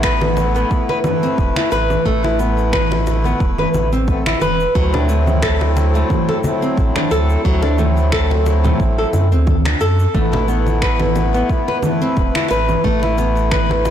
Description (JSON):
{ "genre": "organic downtempo", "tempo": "89 BPM", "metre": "4/4", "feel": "swing 55% on 16ths", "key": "unclear", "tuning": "A4 = 440 Hz", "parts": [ { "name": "pedal harmonium", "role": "accompaniment", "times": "0.0-13.9 s", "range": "F#3 to B4", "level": "-22 LUFS", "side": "left 3 dB", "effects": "sidechain pumping, ping-pong delay" }, { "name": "nylon-string guitar", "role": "arpeggios", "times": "0.0-13.7 s", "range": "F#3 to B4", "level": "-20 LUFS", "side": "left 1 dB", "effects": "ping-pong delay" }, { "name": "warm sub bass", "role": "bass", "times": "0.0-13.9 s", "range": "E1 to F#2", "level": "-18 LUFS", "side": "right 1 dB", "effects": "none" }, { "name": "electronic finger snaps, cabasa and congas", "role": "drums", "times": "0.0-13.9 s", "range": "none", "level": "-23 LUFS", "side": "equal", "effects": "overdrive" }, { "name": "electronic kick drum", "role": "drums", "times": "0.0-13.7 s", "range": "none", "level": "-19 LUFS", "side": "right 1 dB", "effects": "overdrive" }, { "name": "congas", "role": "percussion", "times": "0.2-13.9 s", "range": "none", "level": "-26 LUFS", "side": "left 2 dB", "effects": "none" } ], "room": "light reverb, small room ambience", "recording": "blown-out, overdriven recording, overdrive", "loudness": "-14 LUFS", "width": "side -10 dB against mid", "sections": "0.0-13.9 A section", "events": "none", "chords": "0.0 Amadd9; 4.8 D7; 10.1 Asus2" }